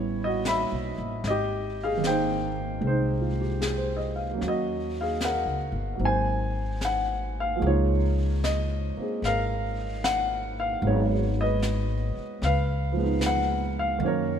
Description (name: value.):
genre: jazz ballad.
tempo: 75 BPM.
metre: 4/4.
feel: swing 68% on 8ths.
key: Ab major, Db major from 7.6 s.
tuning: A4 = 440 Hz.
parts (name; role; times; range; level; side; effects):
warm baby grand piano; accompaniment; 0.0-14.4 s; Eb3 to B5; -26 LUFS; right 1 dB; none.
upright bass; bass; 0.0-14.4 s; G1 to Gb2; -28 LUFS; left 1 dB; none.
jazz brush drum kit; drums; 0.5-14.4 s; brushed snare drum, hi-hat, snare drum; -36 LUFS; left 2 dB; none.
room: light reverb.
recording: none.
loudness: -24 LUFS.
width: side -8 dB against mid.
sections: 0.0-7.6 A section; 7.6-14.4 B section.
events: none.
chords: 0.0 A9; 1.2 Abmaj7; 4.4 Ebm7; 6.0 Ab7; 7.6 Db69; 10.8 Abm7; 12.4 Db9.